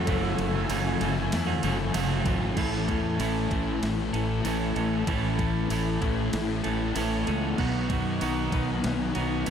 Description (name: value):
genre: rock, shoegaze and dream pop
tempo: 96 BPM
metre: 4/4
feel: straight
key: A lydian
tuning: A4 = 444 Hz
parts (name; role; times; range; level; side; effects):
- phased analog pad; sustained chords; 0.0-2.5 s; A4 to C#6; -35 LUFS; left 1 dB; phaser, chorus
- twelve-string electric guitar; arpeggios; 0.0-9.5 s; D#3 to C#4; -35 LUFS; left 6 dB; lush chorus, analog delay
- overdriven electric guitar; riff; 0.0-9.5 s; F#2 to A4; -30 LUFS; right 9 dB; reverse reverb
- thick fuzz guitar; riff; 0.0-9.5 s; F#2 to B3; -30 LUFS; left 7 dB; distortion, ensemble chorus
- fuzz fingered electric bass; bass; 0.0-9.5 s; F#1 to F#2; -30 LUFS; equal; overdrive
- crisp 8-bit digital drum machine; drums; 0.1-9.5 s; crash cymbal, kick drum, ride cymbal, snare drum; -34 LUFS; equal; overdrive
- tambourine; percussion; 0.2-9.5 s; none; -47 LUFS; right 6 dB; none
room: moderate lush hall reverb, RT60 2.2 s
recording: dreamy mix soaked in reverb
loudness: -24 LUFS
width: side -8 dB against mid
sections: 0.0-2.6 A section; 2.6-9.5 B section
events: none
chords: 0.0 Amaj7; 7.6 Badd9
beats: | 0.08 0.70 1.33 1.95 | 2.58 3.20 3.83 4.46 | 5.08 5.71 6.34 6.96 | 7.59 8.22 8.84 9.47